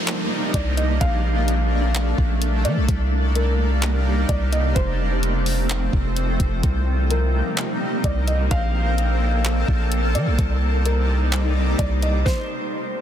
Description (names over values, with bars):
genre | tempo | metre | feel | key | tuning
hip hop, atmospheric cloud-rap | 128 BPM | 4/4 | half-time | C dorian | A4 = 437 Hz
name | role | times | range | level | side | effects
felt-muted upright piano | melody | 0.0-13.0 s | Bb4 to F5 | -30 LUFS | left 1 dB | tape echo
shimmering ambient pad | sustained chords | 0.0-12.2 s | C3 to D5 | -25 LUFS | equal | chorus, built-in reverb, sidechain pumping
downlifter | sound effects | 0.0-2.9 s | none | -34 LUFS | equal | none
smooth R&B drum kit | drums | 0.1-12.4 s | handclaps, hi-hat, kick drum, snare drum | -24 LUFS | equal | none
long sustained 808-style bass | bass | 0.5-12.2 s | F1 to F3 | -20 LUFS | equal | none
wind-like tuned noise texture | texture | 7.3-13.0 s | A3 to Eb5 | -35 LUFS | equal | built-in reverb
room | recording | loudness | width
little or no reverb | dense, heavily limited modern master | -18 LUFS | side -10 dB against mid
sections
0.0-13.0 A section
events
stop 12.3-13.0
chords
0.0 Cm7; 1.0 Bbmaj7; 2.9 Cm7; 4.8 F; 6.6 Cm7; 8.5 Bbmaj7; 10.4 Cm7; 12.3 F